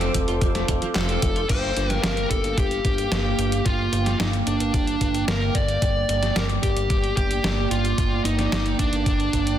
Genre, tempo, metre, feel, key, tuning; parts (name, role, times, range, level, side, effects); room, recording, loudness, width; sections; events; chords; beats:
synthwave; 111 BPM; 4/4; straight; G minor; A4 = 440 Hz
chorused pulse-width pad; sustained chords; 0.0-9.6 s; Bb3 to D6; -29 LUFS; right 3 dB; sidechain pumping
clean electric guitar; riff; 0.0-1.4 s; F3 to F4; -32 LUFS; right 4 dB; lush chorus, ping-pong delay
bell-like tine electric piano; stabs; 0.0-1.5 s; C4 to A4; -31 LUFS; right 2 dB; medium stereo tremolo, digital delay
fat analog bass; bass; 0.0-9.6 s; F1 to G1; -26 LUFS; equal
detuned 8-bit digital drum machine; drums; 0.0-9.6 s; crash cymbal, handclaps, hi-hat, snare drum; -28 LUFS; equal
electronic kick drum; drums; 0.1-9.4 s; -25 LUFS; equal
dark smooth lead guitar; melody; 1.0-9.6 s; D4 to D5; -26 LUFS; left 1 dB; overdrive, vintage 12-bit sampler grit, digital delay
light reverb; dense, heavily limited modern master; -20 LUFS; side -11 dB against mid
0.0-1.5 A section; 1.5-9.6 B section
0.0 F; 1.5 Gm7; 5.8 Ebmaj7/G (rootless)
0.41 0.95 | 1.50 2.04 2.58 3.12 | 3.66 4.20 4.74 5.28 | 5.82 6.36 6.90 7.44 | 7.98 8.52 9.06